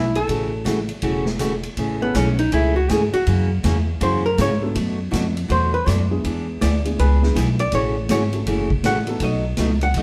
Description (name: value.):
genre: country, western swing.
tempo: 162 BPM.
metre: 4/4.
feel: swing 64% on 8ths.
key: A major.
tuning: A4 = 440 Hz.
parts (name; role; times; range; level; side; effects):
archtop guitar, miked and amplified; melody; 0.0-10.0 s; B3 to F#5; -25 LUFS; equal; none.
picked steel-string acoustic guitar; accompaniment; 0.0-10.0 s; B2 to G#4; -27 LUFS; equal; none.
upright bass; bass; 0.0-10.0 s; E1 to G#2; -24 LUFS; equal; none.
swinging big-band drum kit; drums; 0.2-10.0 s; hi-hat, kick drum, ride cymbal, snare drum; -29 LUFS; equal; none.
dark upright piano; accompaniment; 0.3-2.1, 4.6-9.2 s; G#3 to A4; -32 LUFS; equal; none.
room: moderate stone room reverb, RT60 1.2 s.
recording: band playing live in one room.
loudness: -20 LUFS.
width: mono.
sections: 0.0-1.8 A section; 1.8-10.0 B section.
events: hollow-body jazz guitar solo 1.8-10.0.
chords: 0.3 A6; 1.8 Amaj7; 3.3 F#7; 4.8 Bm7; 6.2 E7; 7.7 A6; 9.2 B7.